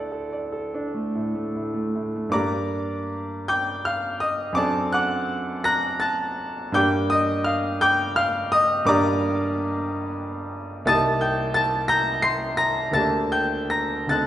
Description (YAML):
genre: classical, romantic nocturne for solo piano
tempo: 48-62 BPM (dotted quarters)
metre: 12/8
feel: rubato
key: G minor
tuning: A4 = 435 Hz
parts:
  - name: clear concert grand piano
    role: solo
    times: 0.0-14.3 s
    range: C2 to C7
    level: -21 LUFS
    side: equal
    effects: none
room: wet recital hall reverb, RT60 1.7 s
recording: heard from further back in the room, nothing above 10.7 kHz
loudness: -21 LUFS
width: side -12 dB against mid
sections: 0.0-2.3 A section; 2.3-14.3 B section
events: none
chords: 0.0 D; 2.3 Gm; 4.6 D7/F#; 6.8 Gm; 10.9 Cm7; 13.0 Gm/D